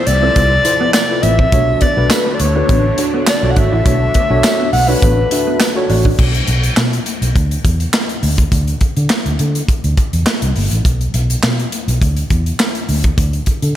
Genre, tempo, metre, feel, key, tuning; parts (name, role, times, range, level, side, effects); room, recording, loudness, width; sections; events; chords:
early-eighties boogie funk; 103 BPM; 4/4; straight; A4 = 438 Hz
breathy soprano saxophone; melody; 0.0-5.8 s; B4 to F#5; -16 LUFS; left 1 dB; slapback echo
tine electric piano; accompaniment; 0.0-6.1 s; D4 to E5; -20 LUFS; equal; wide subtle chorus, slapback echo
lush unison pad; sustained chords; 0.0-6.1 s; C3 to E5; -25 LUFS; right 1 dB; chorus, phaser
mellow electric guitar; riff; 0.1-6.1 s; A3 to E4; -25 LUFS; right 3 dB; ensemble chorus, slapback echo
vintage muted fingered electric bass; bass; 0.1-13.7 s; G1 to D3; -15 LUFS; equal
modern studio drum kit; drums; 0.1-13.8 s; crash cymbal, handclaps, hi-hat, kick drum, snare drum; -16 LUFS; equal
tambourine; percussion; 0.9-5.7 s; -29 LUFS; right 5 dB
moderate recital hall reverb, RT60 1.7 s; big arena sound; -12 LUFS; side -12 dB against mid
0.0-6.2 A section; 6.2-13.8 B section
0.0 Dm9; 1.5 Bm9; 6.2 N.C.